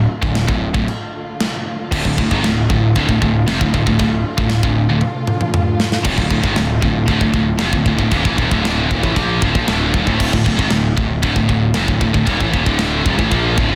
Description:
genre	heavy metal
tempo	116 BPM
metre	4/4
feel	straight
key	D minor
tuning	A4 = 441 Hz
part	warm studio string section	sustained chords	0.0-13.8 s	D3 to F4	-30 LUFS	equal	none
part	scooped high-gain guitar	riff	0.0-13.8 s	D2 to Bb3	-20 LUFS	equal	distortion
part	scooped high-gain guitar	riff	0.0-13.8 s	D2 to Bb3	-24 LUFS	equal	distortion
part	fuzz picked electric bass	bass	0.0-13.8 s	D1 to Bb1	-23 LUFS	equal	overdrive
part	tight metal drum kit	drums	0.2-13.7 s	china cymbal, crash cymbal, kick drum, snare drum, toms	-22 LUFS	equal	none
room	small room ambience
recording	dense, heavily limited modern master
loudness	-16 LUFS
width	mono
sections	0.0-13.8 A section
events	drum fill 5.0-6.1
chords	0.0 Dm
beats	0.35 0.87 1.39 | 1.91 2.43 2.95 3.46 | 3.98 4.50 5.02 5.54 | 6.05 6.57 7.09 7.61 | 8.12 8.64 9.16 9.68 | 10.20 10.72 11.24 11.76 | 12.28 12.80 13.32

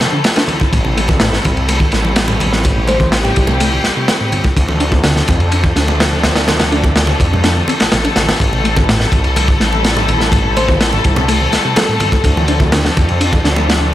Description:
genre	breakbeat, breaks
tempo	125 BPM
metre	4/4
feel	straight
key	A minor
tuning	A4 = 440 Hz
part	dark symphonic string section	sustained chords	0.0-13.9 s	F3 to A4	-19 LUFS	left 2 dB	sidechain pumping
part	deep acid bass	riff	0.0-13.9 s	A1 to E4	-20 LUFS	equal	wide subtle chorus, ping-pong delay
part	crunchy breakbeat drum kit	drums	0.0-13.8 s	kick drum, ride cymbal, snare drum	-14 LUFS	equal	none
part	congas	percussion	0.0-13.7 s	none	-23 LUFS	right 2 dB	none
part	detuned saw bass	bass	0.7-13.9 s	A1 to F2	-17 LUFS	equal	tube saturation
part	bell-like FM electric piano	melody	2.9-3.6, 10.6-12.2 s	G4 to C5	-21 LUFS	left 1 dB	chorus, tremolo, small speaker sound, ping-pong delay
room	light reverb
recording	vinyl crackle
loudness	-11 LUFS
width	side -13 dB against mid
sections	0.0-13.9 A section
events	filter sweep on acid bass 0.0-13.9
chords	0.0 Dm7; 0.7 Am7; 4.6 Dm7; 8.4 Am7; 12.2 Dm7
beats	0.24 | 0.72 1.20 1.68 2.16 | 2.64 3.12 3.60 4.08 | 4.56 5.04 5.52 6.00 | 6.48 6.96 7.44 7.92 | 8.40 8.88 9.36 9.84 | 10.32 10.80 11.28 11.76 | 12.24 12.72 13.20 13.68

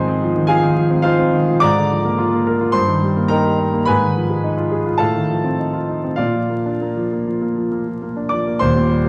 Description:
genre	classical, virtuoso piano study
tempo	97-109 BPM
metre	4/4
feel	rubato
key	unclear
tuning	A4 = 440 Hz
part	clear concert grand piano	solo	0.0-9.1 s	Eb1 to D6	-18 LUFS	equal	none
room	moderate scoring stage reverb, RT60 2.0 s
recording	close, detailed microphones, vinyl crackle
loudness	-18 LUFS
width	mono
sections	0.0-8.6 A section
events	none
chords	0.0 Fm7/Ab; 1.6 Bb7/Ab; 2.7 Eb/G; 3.9 Fm7b5/Ab; 5.0 F7/A; 6.2 Bb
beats	0.49 1.05 | 1.63 2.19 2.75 3.31 | 3.88 4.44 5.00 5.58 | 6.19 6.81 7.41 8.02 | 8.62

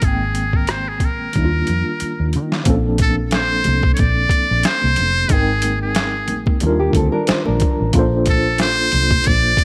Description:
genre	R&B, neo-soul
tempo	91 BPM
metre	4/4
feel	swing 54% on 16ths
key	Bb major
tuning	A4 = 440 Hz
part	trumpet with metal mute	melody	0.0-9.6 s	Ab4 to D5	-22 LUFS	equal	tape echo
part	tine electric piano	accompaniment	0.0-9.6 s	Eb3 to G5	-25 LUFS	equal	medium tremolo
part	vintage muted fingered electric bass	bass	0.0-9.5 s	F1 to Eb3	-23 LUFS	equal	none
part	boom bap sampler-style drum kit	drums	0.0-9.6 s	hi-hat, kick drum, rim click, snare drum	-21 LUFS	equal	none
part	congas	percussion	3.0-9.6 s	none	-31 LUFS	equal	none
part	nylon-string guitar	second line	6.8-7.9 s	Bb3 to C5	-24 LUFS	equal	tape echo
room	studio ambience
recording	none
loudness	-17 LUFS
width	mono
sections	0.0-2.7 A section; 2.7-9.6 B section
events	drum fill 1.3-2.7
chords	0.0 Abmaj9; 1.3 Ebmaj9; 2.7 Bbmaj9; 5.3 Abmaj9; 6.6 Ebmaj9; 7.9 Bbmaj9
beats	| 0.02 0.68 1.34 2.00 | 2.66 3.32 3.98 4.64 | 5.29 5.96 6.61 7.27 | 7.93 8.59 9.25

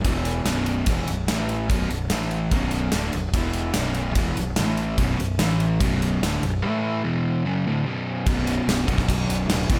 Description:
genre	hard rock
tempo	146 BPM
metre	4/4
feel	straight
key	B minor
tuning	A4 = 440 Hz
part	overdriven semi-hollow guitar	riff	0.0-9.8 s	B1 to A3	-26 LUFS	equal	none
part	fuzz fingered electric bass	bass	0.0-9.8 s	B0 to A1	-30 LUFS	equal	overdrive
part	gated 80s drum kit	drums	0.0-9.8 s	kick drum, ride cymbal, snare drum	-28 LUFS	equal	none
room	light reverb, studio ambience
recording	none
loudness	-24 LUFS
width	mono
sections	0.0-8.3 A section; 8.3-9.8 B section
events	none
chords	0.1 E5; 0.5 B5; 1.3 A5; 1.7 B5; 2.1 A5; 2.5 Bm; 3.3 E5; 3.8 B5; 4.6 A5; 5.0 B5; 5.4 A5; 5.8 Bm; 6.6 A5; 7.0 E5; 7.5 Bm; 8.3 B5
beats	| 0.06 0.47 0.88 1.29 | 1.71 2.12 2.53 2.94 | 3.35 3.76 4.17 4.58 | 4.99 5.40 5.81 6.22 | 6.63 7.04 7.45 7.86 | 8.27 8.68 9.09 9.50

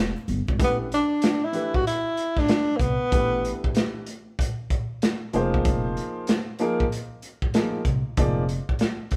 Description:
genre	hip hop, jazz-hop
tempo	95 BPM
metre	4/4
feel	swing 63% on 16ths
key	unclear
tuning	A4 = 441 Hz
part	upright bass	bass	0.0-8.6 s	E1 to C2	-31 LUFS	equal	none
part	tube shaker and congas	percussion	0.2-0.6 s	none	-38 LUFS	equal	none
part	crunchy breakbeat drum kit	drums	0.3-9.2 s	hi-hat, kick drum, snare drum	-27 LUFS	equal	none
part	breathy tenor saxophone	melody	0.6-3.8 s	Bb3 to F#4	-26 LUFS	equal	none
part	warm upright piano	accompaniment	0.6-8.4 s	E3 to D5	-30 LUFS	equal	none
room	light reverb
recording	band playing live in one room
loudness	-24 LUFS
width	mono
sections	0.6-9.2 A section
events	none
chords	0.0 A7(no3) (rootless); 0.6 A9sus4; 5.3 Fm7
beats	| 0.60 1.23 1.86 2.49 | 3.12 3.76 4.39 5.02 | 5.65 6.28 6.91 7.54 | 8.18 8.81

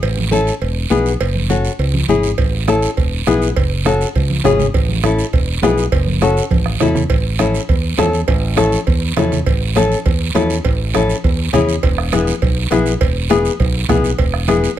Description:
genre	latin, cumbia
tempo	203 BPM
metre	4/4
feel	straight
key	A major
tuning	A4 = 436 Hz
part	fingered electric bass	bass	0.0-14.7 s	E1 to E2	-18 LUFS	equal	none
part	congas	percussion	0.0-14.6 s	none	-24 LUFS	right 2 dB	none
part	cowbell and timbales	percussion	0.0-14.6 s	none	-25 LUFS	right 5 dB	none
part	guiro	percussion	0.0-14.8 s	none	-28 LUFS	right 9 dB	none
part	nylon-string guitar	accompaniment	0.3-14.7 s	B3 to A4	-16 LUFS	left 4 dB	none
part	bombo	percussion	2.4-14.6 s	none	-19 LUFS	right 2 dB	none
room	light reverb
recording	none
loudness	-13 LUFS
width	side -11 dB against mid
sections	0.0-7.1 A section; 7.1-14.8 B section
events	drum fill 6.5-7.1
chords	0.0 A; 0.6 E; 1.2 F#m; 1.8 C#m; 2.4 A; 3.0 E; 3.6 F#m; 4.2 C#m; 4.7 A; 5.3 E; 5.9 F#m; 6.5 A; 11.8 E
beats	| 0.03 0.32 0.61 0.91 | 1.21 1.50 1.79 2.09 | 2.38 2.68 2.97 3.27 | 3.56 3.86 4.15 4.45 | 4.74 5.04 5.33 5.63 | 5.92 6.22 6.51 6.81 | 7.10 7.40 7.70 7.99 | 8.29 8.58 8.88 9.17 | 9.47 9.76 10.06 10.35 | 10.65 10.94 11.24 11.53 | 11.83 12.12 12.42 12.71 | 13.01 13.30 13.60 13.89 | 14.19 14.48 14.78

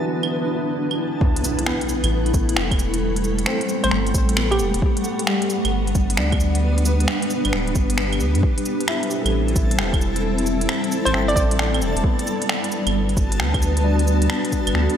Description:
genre	future garage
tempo	133 BPM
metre	4/4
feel	swing 66% on 16ths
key	A dorian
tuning	A4 = 442 Hz
part	dark upright piano	accompaniment	0.0-15.0 s	D3 to A4	-30 LUFS	equal	sidechain pumping, ping-pong delay
part	granular cloud pad	sustained chords	0.0-15.0 s	G3 to F#5	-23 LUFS	left 1 dB	built-in reverb, vintage 12-bit sampler grit, sidechain pumping
part	backwards swelling texture	texture	0.0-1.2, 9.2-15.0 s	A5	-34 LUFS	left 1 dB	built-in reverb
part	organic electronic drum kit	drums	0.2-15.0 s	cabasa, claves, finger snaps, hi-hat	-26 LUFS	right 1 dB	overdrive
part	electronic kick drum	drums	1.2-14.6 s	none	-21 LUFS	equal	overdrive
part	impact	sound effects	1.2-3.0 s	none	-29 LUFS	equal	none
part	soft dub sub bass	bass	2.0-14.9 s	D1 to G2	-22 LUFS	equal	sidechain pumping
part	hollow square pluck	melody	3.8-4.9, 11.1-11.5 s	G4 to D5	-26 LUFS	equal	chorus, cassette tape, ping-pong delay
room	moderate huge ambient reverb, RT60 4.2 s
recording	dreamy mix soaked in reverb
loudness	-18 LUFS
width	side -9 dB against mid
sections	0.0-1.2 A section; 1.2-15.0 B section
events	impact 1.2-3.0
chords	0.0 Gmaj7; 1.2 Am7; 4.8 Gmaj7; 8.4 Am7; 12.0 Gmaj7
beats	0.31 0.76 | 1.21 1.67 2.12 2.57 | 3.02 3.47 3.92 4.37 | 4.82 5.27 5.72 6.18 | 6.63 7.08 7.53 7.98 | 8.43 8.88 9.33 9.79 | 10.24 10.69 11.14 11.59 | 12.04 12.49 12.94 13.39 | 13.85 14.30 14.75

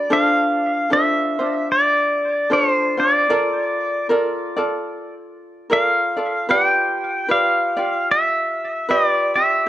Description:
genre	Hawaiian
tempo	75 BPM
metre	4/4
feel	swing 59% on 8ths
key	D minor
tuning	A4 = 438 Hz
part	pedal steel guitar	melody	0.0-9.7 s	C5 to G5	-18 LUFS	equal	plate reverb, analog delay
part	ukulele	accompaniment	0.0-9.7 s	D4 to D5	-22 LUFS	equal	plate reverb
room	wet studio reverb, RT60 0.6 s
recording	dark, warm production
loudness	-16 LUFS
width	side -13 dB against mid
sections	0.1-9.7 A section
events	none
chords	0.1 Dm7; 3.3 Bbmaj7; 6.5 G7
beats	| 0.11 0.91 1.70 2.50 | 3.30 4.09 4.89 5.68 | 6.48 7.28 8.07 8.87 | 9.66

